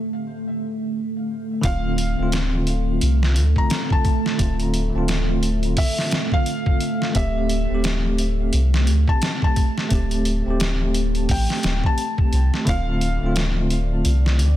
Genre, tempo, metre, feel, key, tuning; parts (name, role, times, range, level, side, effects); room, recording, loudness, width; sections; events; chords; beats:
trip hop; 87 BPM; 4/4; swing 59% on 16ths; D minor; A4 = 440 Hz
bell-like tine electric piano; accompaniment; 0.0-14.6 s; D3 to G4; -26 LUFS; equal; tremolo, tape echo
deep dark ambient pad; sustained chords; 0.0-14.6 s; A3 to D5; -28 LUFS; right 2 dB; chorus, built-in reverb
felt-muted upright piano; melody; 1.6-13.3 s; E5 to Bb5; -30 LUFS; left 1 dB; vintage 12-bit sampler grit, tape echo
warm sub bass; bass; 1.6-14.6 s; D1 to D2; -20 LUFS; equal
trip hop sampler-style drum kit; drums; 1.6-14.6 s; hi-hat, kick drum, snare drum; -22 LUFS; equal; small room ambience
little or no reverb; dense, heavily limited modern master; -18 LUFS; side -13 dB against mid
0.0-1.6 A section; 1.6-14.6 B section
filter sweep on tine electric piano 0.0-1.6
0.0 Am7; 1.6 Dm7; 7.1 Am7/D; 12.7 Dm7
0.25 0.94 | 1.63 2.32 3.01 3.70 | 4.39 5.08 5.77 6.46 | 7.15 7.84 8.53 9.22 | 9.91 10.60 11.29 11.98 | 12.67 13.36 14.04